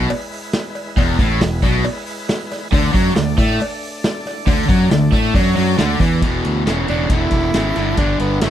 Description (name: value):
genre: classic rock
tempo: 137 BPM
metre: 4/4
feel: straight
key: E mixolydian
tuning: A4 = 441 Hz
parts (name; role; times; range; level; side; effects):
- bright tonewheel organ; sustained chords; 0.0-8.5 s; G3 to D5; -31 LUFS; equal; slow rotary speaker, overdrive
- distorted electric guitar; riff; 0.0-8.5 s; E2 to A3; -22 LUFS; left 13 dB; overdrive
- raw garage guitar; riff; 0.0-8.5 s; E2 to A3; -23 LUFS; right 10 dB; overdrive
- growling fingered electric bass; bass; 0.0-8.5 s; E1 to A2; -19 LUFS; equal; overdrive
- vintage drum kit; drums; 0.1-8.5 s; hi-hat, kick drum, ride cymbal, snare drum; -20 LUFS; equal; none
- cowbell; percussion; 0.1-6.1 s; none; -30 LUFS; left 1 dB; none
- crunchy overdriven guitar; riff; 2.7-6.2 s; D3 to A3; -21 LUFS; right 1 dB; none
- raspy tenor saxophone; melody; 6.9-8.5 s; A3 to E4; -22 LUFS; right 2 dB; none
room: studio ambience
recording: none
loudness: -15 LUFS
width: side -11 dB against mid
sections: 0.0-6.2 A section; 6.2-8.5 B section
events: tenor saxophone solo 6.2-8.5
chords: 0.0 E; 2.7 D5; 6.2 E; 7.8 G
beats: 0.11 0.54 | 0.98 1.42 1.85 2.29 | 2.73 3.16 3.60 4.04 | 4.47 4.91 5.35 5.79 | 6.22 6.66 7.10 7.54 | 7.99 8.43